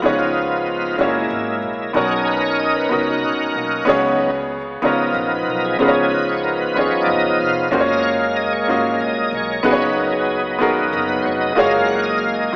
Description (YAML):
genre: slow gospel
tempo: 62 BPM (dotted quarters)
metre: 6/8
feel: straight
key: unclear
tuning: A4 = 442 Hz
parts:
  - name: bright upright piano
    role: accompaniment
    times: 0.0-12.6 s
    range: B2 to D#5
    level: -18 LUFS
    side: equal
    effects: none
  - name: bright tonewheel organ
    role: sustained chords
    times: 0.0-12.6 s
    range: E#3 to F#5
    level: -19 LUFS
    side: equal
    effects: overdrive, chorus vibrato, slow rotary speaker
  - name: upright bass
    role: bass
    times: 0.0-12.6 s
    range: E#1 to D#2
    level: -34 LUFS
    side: equal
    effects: none
room: wet concert hall reverb, RT60 2.0 s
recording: small speaker sound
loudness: -15 LUFS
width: side -39 dB against mid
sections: 0.0-12.6 A section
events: tonewheel organ solo 0.0-12.6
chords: 0.0 C#9; 1.0 F#7; 2.0 Bmaj9; 3.9 C#7sus4; 4.8 C#13; 5.8 C#7; 7.7 F#maj7; 9.7 C#9sus4; 11.6 F#maj9